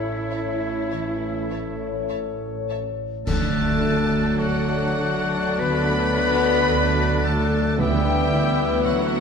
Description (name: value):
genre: classical, slow romantic movement for symphony orchestra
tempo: 47-57 BPM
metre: 4/4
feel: rubato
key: D major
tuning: A4 = 442 Hz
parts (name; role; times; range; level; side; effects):
- bright clarinet; second line; 0.0-9.2 s; C#5 to E5; -33 LUFS; left 3 dB; none
- clear oboe; second line; 0.0-9.2 s; F#4 to E5; -33 LUFS; right 1 dB; none
- silver concert flute; second line; 0.0-9.2 s; E5 to F#6; -31 LUFS; left 2 dB; none
- mellow bassoon; accompaniment; 0.0-9.2 s; A3 to B3; -32 LUFS; right 2 dB; none
- warm studio viola section; accompaniment; 0.0-9.2 s; E3 to E4; -30 LUFS; equal; none
- dark French horn section; sustained chords; 0.0-9.2 s; F#3 to C#4; -27 LUFS; left 4 dB; none
- concert harp; arpeggios; 0.0-9.2 s; A2 to F#5; -30 LUFS; left 8 dB; none
- warm studio cello section; bass; 0.0-9.2 s; D3 to E4; -32 LUFS; right 4 dB; none
- warm studio double bass section; bass; 0.0-9.2 s; A1 to D2; -27 LUFS; right 4 dB; none
- timpani; percussion; 0.0-0.3, 7.8-9.2 s; A2 to D3; -28 LUFS; right 2 dB; none
- warm studio violin section; melody; 0.3-9.2 s; F#5 to B5; -29 LUFS; left 1 dB; none
- rich studio violin section; second line; 0.3-9.2 s; D4 to E5; -35 LUFS; left 3 dB; none
- warm trombone section; sustained chords; 3.3-9.2 s; E3 to D4; -31 LUFS; right 1 dB; none
- clash cymbals and concert bass drum; percussion; 3.3-5.6 s; none; -30 LUFS; equal; none
room: wet recital hall reverb, RT60 1.4 s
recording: dark, warm production, lossy compression artefacts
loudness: -20 LUFS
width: side -6 dB against mid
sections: 0.0-3.3 A section; 3.3-9.2 B section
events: band accent 3.3-4.4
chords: 0.0 A; 3.3 D; 7.8 Em7/D